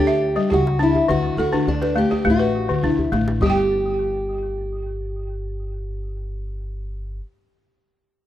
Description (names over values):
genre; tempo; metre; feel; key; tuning
west african traditional, West African string and xylophone music; 103 BPM; 4/4; straight; unclear; A4 = 440 Hz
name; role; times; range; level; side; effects
fingerpicked steel-string acoustic guitar; melody; 0.0-7.2 s; D4 to G4; -23 LUFS; left 1 dB; none
balafon; arpeggios; 0.0-7.3 s; D3 to G5; -21 LUFS; left 2 dB; tape echo
upright bass; bass; 0.0-7.2 s; G1 to D2; -27 LUFS; equal; none
djembe; percussion; 0.5-3.7 s; none; -26 LUFS; equal; none
room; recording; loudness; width
light reverb, small room ambience; rough home demo mix; -18 LUFS; side -12 dB against mid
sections
0.0-3.4 A section; 3.4-5.7 B section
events
drum fill 2.7-3.4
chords
0.0 G5; 1.1 D; 3.4 N.C.